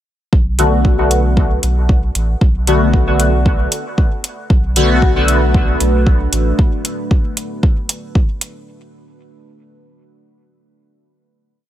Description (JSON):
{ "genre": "dub techno", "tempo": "115 BPM", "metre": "4/4", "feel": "swing 53% on 16ths", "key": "B minor", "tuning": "A4 = 441 Hz", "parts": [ { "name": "warm sub bass", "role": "bass", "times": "0.3-6.5 s", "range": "A1 to B1", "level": "-16 LUFS", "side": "equal", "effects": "sidechain pumping" }, { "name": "electronic kick drum", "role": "drums", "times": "0.3-8.3 s", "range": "none", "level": "-13 LUFS", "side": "equal", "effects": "none" }, { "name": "resonant sweep polysynth", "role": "stabs", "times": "0.6-5.4 s", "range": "D3 to F#4", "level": "-17 LUFS", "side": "left 1 dB", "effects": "chorus, phaser, sidechain pumping, dub echo" }, { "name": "electronic hi-hat", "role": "drums", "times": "0.6-8.5 s", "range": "none", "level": "-19 LUFS", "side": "equal", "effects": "none" }, { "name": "deep dark ambient pad", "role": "sustained chords", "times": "5.2-6.6 s", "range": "A3 to B4", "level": "-23 LUFS", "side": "right 1 dB", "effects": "chorus, built-in reverb, sidechain pumping" } ], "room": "little or no reverb", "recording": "none", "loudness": "-12 LUFS", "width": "side -12 dB against mid", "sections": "0.3-8.7 groove", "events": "none", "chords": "0.3 Bm7" }